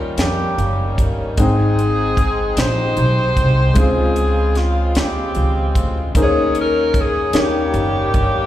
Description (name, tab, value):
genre	slow gospel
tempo	50 BPM (dotted quarters)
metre	6/8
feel	straight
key	Ab major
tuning	A4 = 440 Hz
part	clear saxophone section	melody	0.0-8.5 s	Bb3 to C5	-20 LUFS	left 1 dB	plate reverb, slapback echo
part	warm upright piano	accompaniment	0.0-8.5 s	Ab2 to G5	-22 LUFS	left 3 dB	plate reverb
part	muted French horn section	sustained chords	0.0-8.5 s	Db3 to F4	-29 LUFS	right 1 dB	plate reverb
part	upright bass	bass	0.0-8.5 s	Gb1 to F2	-19 LUFS	equal	none
part	tight funk drum kit	drums	0.2-8.3 s	hi-hat, kick drum, snare drum	-18 LUFS	equal	none
room	light reverb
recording	live gig heard through the venue's PA, recital hall reverb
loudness	-14 LUFS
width	side -13 dB against mid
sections	0.0-8.5 A section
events	none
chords	0.0 Eb7; 1.4 Abmaj7; 3.8 Dbmaj7; 6.2 Eb7sus4; 7.4 Eb7